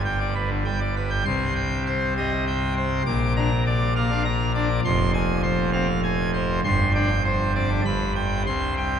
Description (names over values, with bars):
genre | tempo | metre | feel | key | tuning
classical, organ toccata | 100 BPM | 3/4 | straight | unclear | A4 = 443 Hz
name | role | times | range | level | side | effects
pipe organ, full organ | solo | 0.0-9.0 s | F1 to D6 | -21 LUFS | equal | none
room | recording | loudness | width
wet cathedral reverb, RT60 6.2 s | minimal, uncompressed stereo recording | -21 LUFS | side -8 dB against mid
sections
0.0-1.3 A section; 1.3-9.0 A section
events
none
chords
0.0 G; 1.3 Cm; 3.1 Bb; 4.8 Fm; 6.6 Gsus4; 7.9 G; 8.5 C5